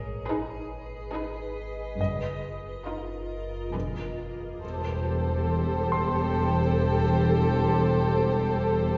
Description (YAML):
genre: cinematic, suspense film score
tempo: 70 BPM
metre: 3/4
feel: straight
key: unclear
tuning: A4 = 443 Hz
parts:
  - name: granular cloud pad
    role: sustained chords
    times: 0.0-9.0 s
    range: F4 to G5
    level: -38 LUFS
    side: equal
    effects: built-in reverb
  - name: muted studio cello section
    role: bass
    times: 0.0-9.0 s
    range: E2 to Ab2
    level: -32 LUFS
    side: equal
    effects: none
  - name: muted studio double bass section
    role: bass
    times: 0.0-9.0 s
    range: E1 to Ab1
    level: -32 LUFS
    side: equal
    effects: none
  - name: deep rumbling drone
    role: drone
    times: 0.0-9.0 s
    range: Gb1 to E2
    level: -39 LUFS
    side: equal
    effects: built-in reverb
  - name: bright baby grand piano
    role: texture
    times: 0.0-9.0 s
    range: Eb5 to C6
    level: -39 LUFS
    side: equal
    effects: none
  - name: muted studio violin section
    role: melody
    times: 0.3-9.0 s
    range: Bb4 to C5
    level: -38 LUFS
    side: equal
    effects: none
  - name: muted studio violin section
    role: second line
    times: 0.3-9.0 s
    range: F4 to A4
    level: -36 LUFS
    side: equal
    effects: none
  - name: muted studio viola section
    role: accompaniment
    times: 0.3-9.0 s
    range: D3 to G4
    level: -37 LUFS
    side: equal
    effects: none
  - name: mellow French horn section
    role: sustained chords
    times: 4.6-9.0 s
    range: G3 to A4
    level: -34 LUFS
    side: equal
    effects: none
room: wet recital hall reverb, RT60 1.6 s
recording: recorded in a church or concert hall, nothing above 7.6 kHz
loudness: -27 LUFS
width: mono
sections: 0.0-4.6 A section; 4.6-9.0 B section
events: none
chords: 0.0 Abm; 2.0 Ebmadd9/Gb; 3.7 E7; 4.6 Am7/E